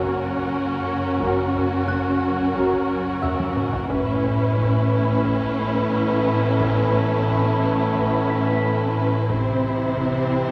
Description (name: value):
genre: cinematic, suspense film score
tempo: 89 BPM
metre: 4/4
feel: straight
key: unclear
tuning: A4 = 440 Hz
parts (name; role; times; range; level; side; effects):
- warm studio violin section; melody; 0.0-10.5 s; A#4 to C5; -31 LUFS; equal; none
- dark studio violin section; second line; 0.0-10.5 s; E4 to F#4; -30 LUFS; equal; none
- dark studio viola section; accompaniment; 0.0-10.5 s; C4 to C#4; -27 LUFS; equal; none
- clear trombone section; sustained chords; 0.0-10.5 s; E3 to C4; -34 LUFS; equal; none
- warm French horn section; sustained chords; 0.0-10.5 s; C4 to A4; -32 LUFS; equal; none
- marimba with medium mallets; riff; 0.0-10.5 s; F#2 to C4; -28 LUFS; equal; none
- dark studio double bass section; bass; 0.0-10.5 s; F#1 to C2; -36 LUFS; equal; none
- warm studio cello section; bass; 0.0-10.5 s; F#2 to C3; -32 LUFS; equal; none
- solo taiko drums; drums; 0.0-10.5 s; none; -36 LUFS; equal; none
- music box; texture; 0.0-10.3 s; E5 to B6; -37 LUFS; equal; none
room: wet concert hall reverb, RT60 1.8 s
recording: none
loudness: -21 LUFS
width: mono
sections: 0.0-10.5 A section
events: drum fill 3.2-3.9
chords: 0.0 F#; 3.9 Aadd9; 9.3 C